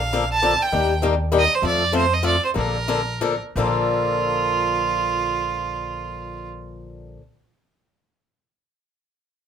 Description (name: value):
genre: acoustic string swing (jazz manouche)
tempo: 168-198 BPM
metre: 3/4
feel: swing 59% on 8ths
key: Bb major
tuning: A4 = 441 Hz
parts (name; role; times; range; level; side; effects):
- clear violin; melody; 0.0-6.5 s; F4 to A5; -22 LUFS; right 5 dB; none
- picked swing-style acoustic guitar; accompaniment; 0.0-7.2 s; Bb2 to A4; -24 LUFS; left 4 dB; none
- upright bass; bass; 0.0-7.2 s; Bb1 to F2; -27 LUFS; equal; none
room: moderate club reverb, RT60 0.7 s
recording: minimal, uncompressed stereo recording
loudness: -18 LUFS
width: side -8 dB against mid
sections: 0.0-3.6 A section; 3.6-5.7 B section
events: slowing down 1.6-3.6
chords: 0.0 Bbmaj7; 0.7 Ebmaj7; 1.6 F; 2.6 Bbmaj7